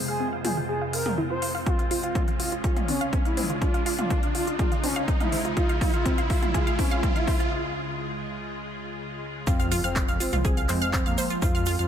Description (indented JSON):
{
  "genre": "melodic techno",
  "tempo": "123 BPM",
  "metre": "4/4",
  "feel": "straight",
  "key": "unclear",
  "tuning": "A4 = 440 Hz",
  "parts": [
    { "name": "evolving wavetable pad", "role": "sustained chords", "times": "0.0-11.9 s", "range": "Db2 to C5", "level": "-34 LUFS", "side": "equal", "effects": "ensemble chorus, built-in reverb, vintage 12-bit sampler grit, sidechain pumping" },
    { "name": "wide unison pluck", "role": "arpeggios", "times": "0.0-11.9 s", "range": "C4 to F6", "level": "-31 LUFS", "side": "right 1 dB", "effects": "sidechain pumping, tape echo" },
    { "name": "riser and impact", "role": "sound effects", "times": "0.0-11.4 s", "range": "none", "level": "-34 LUFS", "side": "right 1 dB", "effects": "none" },
    { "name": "expressive portamento lead", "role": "melody", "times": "0.1-11.9 s", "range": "Ab3 to C5", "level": "-31 LUFS", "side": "equal", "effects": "chorus, dub echo" },
    { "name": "techno drum kit", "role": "drums", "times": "0.4-11.9 s", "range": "handclaps, hi-hat, toms", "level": "-32 LUFS", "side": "equal", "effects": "sidechain pumping on hats, sidechain pumping on toms" },
    { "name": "electronic kick drum", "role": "drums", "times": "1.7-11.5 s", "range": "none", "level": "-25 LUFS", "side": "equal", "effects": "none" },
    { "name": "swelling detuned saw bass", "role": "bass", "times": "9.5-11.9 s", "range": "C2 to F2", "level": "-28 LUFS", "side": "equal", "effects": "sidechain pumping" },
    { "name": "egg shaker", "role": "percussion", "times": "9.5-11.9 s", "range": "none", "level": "-38 LUFS", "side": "right 6 dB", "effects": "none" }
  ],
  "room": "light reverb",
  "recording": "none",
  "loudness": "-23 LUFS",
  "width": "side -9 dB against mid",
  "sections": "0.0-9.5 A section; 9.5-11.9 B section",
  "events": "build-up 0.0-9.5; riser 0.0-7.5; filter sweep on synth arpeggio sound 0.0-9.5; drum fill 1.7-7.5; break 7.5-9.5; drop 9.5-11.9; impact 9.5-11.4",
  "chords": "0.0 Fm; 1.7 Db; 9.5 Fm"
}